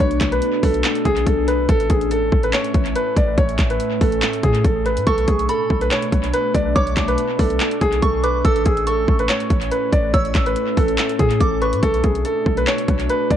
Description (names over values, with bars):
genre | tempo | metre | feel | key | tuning
hip hop, trap | 142 BPM | 4/4 | half-time | B dorian | A4 = 441 Hz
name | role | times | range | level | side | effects
warm concert grand piano | melody | 0.0-13.4 s | G#4 to D5 | -21 LUFS | equal | low-pass filter, analog delay
warbly tape-like pad | sustained chords | 0.0-13.4 s | A2 to D4 | -24 LUFS | equal | chorus, built-in reverb, phaser
warm 808-style bass | bass | 0.0-13.4 s | A1 to A2 | -23 LUFS | equal | none
trap drum kit | drums | 0.0-13.4 s | handclaps, hi-hat, kick drum | -20 LUFS | equal | overdrive, vintage 12-bit sampler grit
soft synth bell | second line | 5.1-11.8 s | B5 to E6 | -27 LUFS | right 2 dB | chorus, analog delay
room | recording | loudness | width
light reverb | echo-heavy mix, cassette tape | -16 LUFS | side -10 dB against mid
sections
0.0-11.8 A section; 11.8-13.4 A section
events
none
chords
0.0 Bm7; 1.7 A; 5.1 Bm7; 8.4 A; 11.8 Bm7